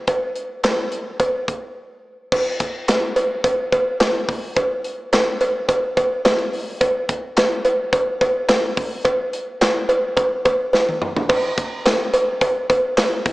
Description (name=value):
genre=funk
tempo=107 BPM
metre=4/4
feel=straight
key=none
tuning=none
part: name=modern studio drum kit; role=drums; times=0.1-13.3 s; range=crash cymbal, handclaps, hi-hat, kick drum, snare drum, toms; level=-22 LUFS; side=equal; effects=none
part: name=cowbell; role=percussion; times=0.1-13.1 s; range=none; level=-19 LUFS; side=right 1 dB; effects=none
room=wet plate reverb, RT60 2.2 s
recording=dreamy mix soaked in reverb, small speaker sound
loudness=-17 LUFS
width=side -19 dB against mid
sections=0.0-2.3 A section; 2.3-13.3 B section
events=break 1.8-2.3; drum fill 10.7-11.3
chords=none